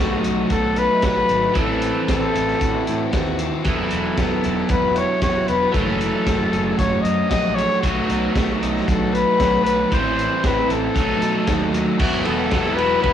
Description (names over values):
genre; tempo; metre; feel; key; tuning
indie rock; 115 BPM; 4/4; straight; unclear; A4 = 439 Hz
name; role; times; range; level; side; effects
warm trumpet; melody; 0.0-13.1 s; F#4 to D#5; -22 LUFS; left 3 dB; digital delay
biting overdriven guitar; riff; 0.0-13.1 s; E3 to F#4; -27 LUFS; left 10 dB; none
crunchy overdriven guitar; riff; 0.0-13.1 s; E3 to E4; -22 LUFS; right 5 dB; analog chorus, digital delay
fuzz picked electric bass; bass; 0.0-13.1 s; E1 to B2; -26 LUFS; left 1 dB; overdrive
vintage drum kit; drums; 0.2-13.1 s; crash cymbal, hi-hat, kick drum, ride cymbal, snare drum; -24 LUFS; equal; none
room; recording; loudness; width
light reverb; blown-out, overdriven recording, overdrive, studio reverb; -17 LUFS; side -9 dB against mid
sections
0.0-12.0 A section; 12.0-13.1 B section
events
none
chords
0.0 B7; 1.6 Am6; 3.7 Esus2; 5.7 F#m7; 7.8 B7; 9.9 Am; 11.0 B7; 12.0 Esus2